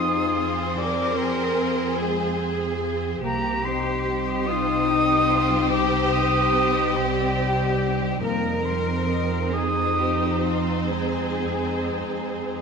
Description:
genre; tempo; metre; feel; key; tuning
cinematic, emotional film score for orchestra; 43-49 BPM (dotted quarters); 6/8; rubato; unclear; A4 = 435 Hz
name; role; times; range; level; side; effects
rich studio violin section; melody; 0.0-12.6 s; C5; -33 LUFS; left 6 dB; none
rich studio violin section; second line; 0.0-12.6 s; Eb4 to Ab4; -33 LUFS; left 3 dB; none
silver concert flute; second line; 0.0-12.6 s; G5 to Eb6; -26 LUFS; right 1 dB; none
rich studio viola section; accompaniment; 0.0-12.6 s; C4; -31 LUFS; right 3 dB; none
mellow French horn section; sustained chords; 0.0-12.6 s; G3 to D5; -28 LUFS; left 6 dB; none
concert harp; arpeggios; 0.0-12.6 s; C3 to C6; -32 LUFS; left 8 dB; none
clear studio cello section; bass; 0.0-12.6 s; Eb4 to Bb4; -29 LUFS; right 1 dB; none
rich studio double bass section; bass; 0.0-12.6 s; C2 to F2; -28 LUFS; right 6 dB; none
room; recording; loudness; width
moderate concert hall reverb, RT60 1.9 s; none; -21 LUFS; side -5 dB against mid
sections
0.0-12.6 A section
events
none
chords
0.0 Fm7; 3.2 Cm; 8.2 Fm7

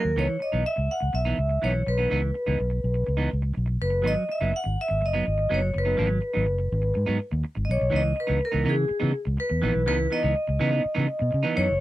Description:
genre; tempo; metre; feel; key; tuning
disco; 124 BPM; 4/4; straight; C# dorian; A4 = 436 Hz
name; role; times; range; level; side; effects
vibraphone with medium hard mallets; melody; 0.0-11.8 s; G#4 to F#5; -26 LUFS; left 1 dB; none
clean electric guitar; accompaniment; 0.0-11.7 s; E3 to D#4; -28 LUFS; right 4 dB; lush chorus
fingered electric bass; bass; 0.1-11.8 s; F#1 to C#3; -25 LUFS; equal; none
room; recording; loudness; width
little or no reverb; dry, close 1970s-style studio recording; -22 LUFS; side -15 dB against mid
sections
0.2-7.9 A section; 7.9-11.8 B section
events
none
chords
0.2 C#m9; 4.0 G#m7; 7.9 C#m9

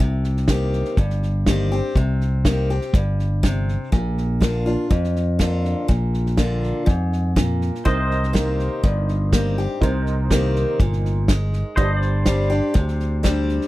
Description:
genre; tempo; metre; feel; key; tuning
honky-tonk and classic country; 122 BPM; 4/4; straight; C minor; A4 = 441 Hz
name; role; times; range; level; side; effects
picked steel-string acoustic guitar; accompaniment; 0.0-13.7 s; F2 to G4; -25 LUFS; left 2 dB; none
fingered electric bass; bass; 0.0-13.6 s; G1 to F2; -21 LUFS; equal; none
natural country drum kit; drums; 0.2-13.7 s; hi-hat, kick drum, snare drum; -20 LUFS; equal; none
honky-tonk upright piano; accompaniment; 7.9-13.7 s; D4 to C5; -30 LUFS; right 5 dB; none
pedal steel guitar; sustained chords; 7.9-13.7 s; C5 to Eb5; -28 LUFS; equal; lush chorus
room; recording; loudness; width
little or no reverb; dry, close 1970s-style studio recording; -18 LUFS; side -17 dB against mid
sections
0.0-13.7 A section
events
none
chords
0.0 Cm7; 3.9 Bb; 7.8 Cm7; 11.8 Gsus4

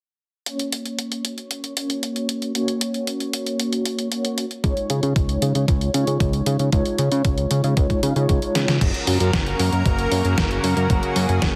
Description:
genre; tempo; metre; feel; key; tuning
italo disco; 115 BPM; 4/4; straight; F# major; A4 = 440 Hz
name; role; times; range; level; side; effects
mellow synth brass; stabs; 0.5-11.6 s; G#3 to E#5; -28 LUFS; equal; chorus, tape echo
detuned 8-bit digital drum machine; drums; 0.5-11.5 s; crash cymbal, hi-hat, snare drum; -28 LUFS; equal; none
fat analog bass; bass; 4.6-11.6 s; F#1 to C#3; -23 LUFS; equal; none
electronic kick drum; drums; 4.6-11.5 s; none; -24 LUFS; equal; none
lush unison pad; sustained chords; 8.8-11.6 s; C#3 to A#4; -26 LUFS; equal; chorus
room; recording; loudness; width
light reverb; heavily compressed radio sound, multiband compression; -21 LUFS; mono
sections
0.5-8.8 A section; 8.8-11.6 B section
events
filter sweep on analog polysynth 0.5-8.8; drum fill 8.6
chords
0.5 F#; 4.6 C#add9; 8.8 F#

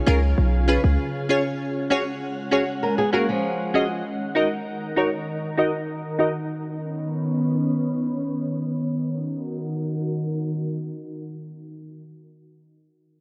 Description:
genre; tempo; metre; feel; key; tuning
dancehall; 98 BPM; 4/4; straight; Eb minor; A4 = 440 Hz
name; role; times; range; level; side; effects
glassy FM pad; sustained chords; 0.0-12.2 s; Db3 to Gb5; -29 LUFS; equal; ensemble chorus, built-in reverb, low-pass filter
wavetable chord stab; accompaniment; 0.1-6.3 s; Db4 to Eb5; -26 LUFS; equal; low-pass filter
hard-hitting 808-style bass; bass; 0.1-1.0 s; Cb2 to Db2; -21 LUFS; equal; none
flamenco guitar; arpeggios; 2.8-4.0 s; F3 to Bb4; -27 LUFS; equal; low-pass filter
room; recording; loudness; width
moderate lush hall reverb, RT60 3.2 s; none; -24 LUFS; mono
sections
0.0-8.9 A section; 8.9-11.4 B section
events
filter sweep 0.0-8.9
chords
0.0 Db; 1.6 Gbsus2; 4.1 Ebm; 6.5 Badd9; 8.9 Ebm

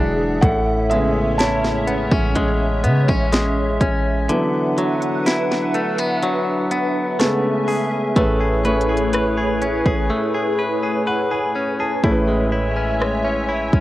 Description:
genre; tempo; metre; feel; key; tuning
contemporary R&B; 62 BPM; 4/4; straight; A major; A4 = 440 Hz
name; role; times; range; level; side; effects
warm concert grand piano; accompaniment; 0.0-13.8 s; A2 to A5; -23 LUFS; equal; cassette tape
hollow soft pad; sustained chords; 0.0-13.8 s; A3 to E6; -24 LUFS; equal; ensemble chorus, cassette tape
direct-recorded clean electric guitar; arpeggios; 0.0-13.8 s; A2 to B4; -22 LUFS; left 2 dB; cassette tape
clean 808-style bass; bass; 0.0-13.8 s; E1 to C#3; -22 LUFS; equal; none
trap drum kit; drums; 0.4-13.8 s; hi-hat, kick drum, rim click, snare drum; -20 LUFS; equal; cassette tape
room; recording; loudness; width
little or no reverb; home recording on cassette; -17 LUFS; side -16 dB against mid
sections
0.0-8.2 A section; 8.2-12.0 B section; 12.0-13.8 C section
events
grand piano solo 0.0-8.2; kick muted 4.3-8.2; break 10.1-12.0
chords
0.4 Amaj7; 4.3 D69; 7.2 Amaj9; 12.0 Amaj7

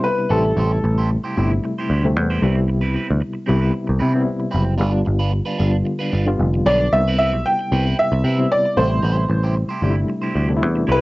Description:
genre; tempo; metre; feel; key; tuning
disco; 113 BPM; 4/4; straight; C major; A4 = 439 Hz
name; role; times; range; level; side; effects
clear grand piano; melody; 0.0-1.1, 6.7-11.0 s; A4 to G5; -19 LUFS; equal; none
overdriven reed electric piano; accompaniment; 0.0-11.0 s; B2 to F4; -23 LUFS; left 1 dB; fast tremolo, cassette tape
electric guitar at the edge of break-up; accompaniment; 0.2-11.0 s; C4 to C5; -28 LUFS; right 4 dB; phaser, cassette tape
picked electric bass; bass; 0.3-11.0 s; F1 to C3; -18 LUFS; equal; none
room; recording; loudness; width
light reverb; home recording on cassette, nothing above 7.9 kHz; -16 LUFS; side -20 dB against mid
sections
0.0-11.0 A section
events
none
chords
0.3 Am7; 2.4 Cmaj7; 4.8 G7; 6.9 Cmaj7; 8.8 Am7

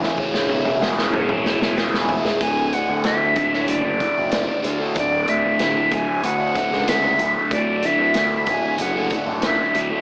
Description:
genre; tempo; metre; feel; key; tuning
psychedelic rock; 94 BPM; 4/4; straight; D lydian; A4 = 439 Hz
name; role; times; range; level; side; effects
fuzz guitar; riff; 0.0-10.0 s; D2 to G#4; -25 LUFS; equal; distortion, phaser
raw garage drum kit; drums; 0.0-9.9 s; hi-hat, kick drum, snare drum, toms; -29 LUFS; equal; none
fuzz picked electric bass; bass; 0.2-10.0 s; D1 to D2; -28 LUFS; equal; overdrive
breathy bright jazz flute; melody; 2.4-9.9 s; C#5 to G#5; -23 LUFS; equal; diffuse ambient delay
room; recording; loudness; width
wet plate reverb, RT60 2.1 s; dreamy mix soaked in reverb, AM radio sound; -20 LUFS; mono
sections
0.0-2.4 A section; 2.4-10.0 B section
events
drum fill 0.0-2.4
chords
0.0 C#m/D; 2.4 Dsus2

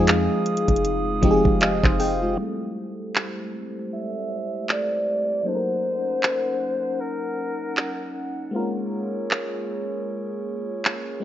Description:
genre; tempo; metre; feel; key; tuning
contemporary R&B; 78 BPM; 4/4; swing 58% on 16ths; unclear; A4 = 439 Hz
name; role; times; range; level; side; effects
FM electric piano with soft pad layer; accompaniment; 0.0-11.2 s; F3 to G5; -26 LUFS; left 1 dB; chorus, low-pass filter
glass harmonica; sustained chords; 0.0-11.2 s; A3 to Eb6; -31 LUFS; right 3 dB; low-pass filter
warm 808-style bass; bass; 0.0-2.4 s; F1 to F2; -27 LUFS; equal; none
smooth R&B drum kit; drums; 0.1-11.1 s; handclaps, hi-hat, kick drum; -23 LUFS; equal; none
growling alto saxophone; melody; 3.9-8.2 s; Bb4 to E5; -26 LUFS; left 1 dB; low-pass filter, digital delay
room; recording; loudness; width
light reverb, digital ambience; rough home demo mix, nothing above 7.5 kHz; -22 LUFS; side -11 dB against mid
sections
0.0-2.4 A section; 2.4-11.2 B section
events
FM electric piano fill 1.2-2.4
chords
0.0 Fm7; 2.4 Am7; 5.5 Ebm7; 8.5 Bbm7

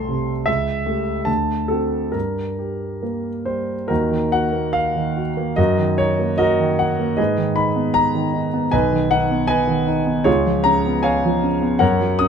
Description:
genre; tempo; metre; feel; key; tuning
classical, romantic character piece for solo piano; 68-80 BPM; 2/4; rubato; G minor, Eb minor from 3.9 s; A4 = 441 Hz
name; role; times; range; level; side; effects
warm concert grand piano; solo; 0.0-12.3 s; B1 to Eb6; -17 LUFS; equal; none
room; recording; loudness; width
little or no reverb; close, detailed microphones; -17 LUFS; side -7 dB against mid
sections
0.0-3.9 A section; 3.9-12.3 B section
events
none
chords
0.5 A7/C#; 1.3 D7; 2.1 Gm; 3.9 Ebm; 5.6 Ebm/Gb; 7.2 Abm; 8.7 B6; 10.3 Db7

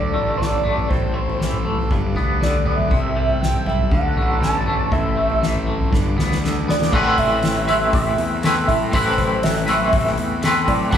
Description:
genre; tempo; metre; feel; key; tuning
psychedelic rock; 120 BPM; 4/4; straight; A dorian; A4 = 440 Hz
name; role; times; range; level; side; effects
overdriven synth lead; melody; 0.0-11.0 s; C5 to A5; -23 LUFS; right 1 dB; chorus
combo organ; sustained chords; 0.0-11.0 s; E3 to B5; -33 LUFS; right 1 dB; none
twangy electric guitar; riff; 0.0-11.0 s; G2 to B4; -22 LUFS; left 1 dB; tremolo
fuzz picked electric bass; bass; 0.0-11.0 s; G1 to A2; -25 LUFS; equal; overdrive
soft-mallet drum kit; drums; 0.2-11.0 s; crash cymbal, hi-hat, kick drum, snare drum, toms; -21 LUFS; equal; none
congas; percussion; 0.5-10.8 s; none; -34 LUFS; left 2 dB; none
room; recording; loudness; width
moderate large studio reverb, RT60 1.3 s; band playing live in one room; -16 LUFS; side -9 dB against mid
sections
0.0-6.9 A section; 6.9-11.0 B section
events
drum fill 5.9-6.9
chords
0.0 D; 0.9 Am; 1.9 G; 2.9 C6; 3.9 D; 4.9 Am; 5.9 G; 6.9 Amadd9

